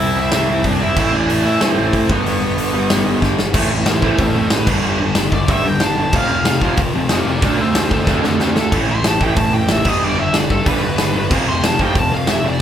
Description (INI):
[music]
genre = punk rock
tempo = 186 BPM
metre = 4/4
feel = straight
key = A minor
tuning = A4 = 440 Hz
[part]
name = high-gain lead guitar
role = melody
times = 0.0-12.6 s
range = B3 to C6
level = -21 LUFS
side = equal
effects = distortion
[part]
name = raw garage guitar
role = riff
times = 0.0-12.6 s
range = F2 to D4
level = -21 LUFS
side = right 4 dB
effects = overdrive
[part]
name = tight distorted guitar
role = riff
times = 0.0-12.6 s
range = F2 to D4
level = -24 LUFS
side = left 6 dB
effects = distortion
[part]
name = fuzz picked electric bass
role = bass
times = 0.0-12.6 s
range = F1 to D3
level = -23 LUFS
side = equal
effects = overdrive
[part]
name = big rock drum kit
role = drums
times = 0.3-12.3 s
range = crash cymbal, hi-hat, kick drum, snare drum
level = -18 LUFS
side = equal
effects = none
[part]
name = distorted electric guitar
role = riff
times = 3.5-12.6 s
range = F2 to F4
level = -24 LUFS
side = left 1 dB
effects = distortion
[sound]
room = light reverb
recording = band playing live in one room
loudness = -14 LUFS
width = side -10 dB against mid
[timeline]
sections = 0.0-3.5 A section; 3.5-12.6 B section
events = half time 0.0-3.5; drum fill 3.2-3.5, 8.1-8.7; lead electric guitar solo 3.5-12.6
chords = 0.0 C; 1.0 Am; 2.1 G; 3.5 Am; 4.7 G; 6.1 F; 7.4 Dm; 8.7 Am; 9.9 G; 11.3 F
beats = 0.00 0.32 0.64 | 0.96 1.29 1.61 1.93 | 2.26 2.58 2.90 3.22 | 3.55 3.87 4.19 4.52 | 4.84 5.16 5.49 5.81 | 6.13 6.46 6.78 7.10 | 7.43 7.75 8.07 8.40 | 8.72 9.04 9.37 9.69 | 10.01 10.34 10.66 10.98 | 11.31 11.63 11.95 12.28 | 12.60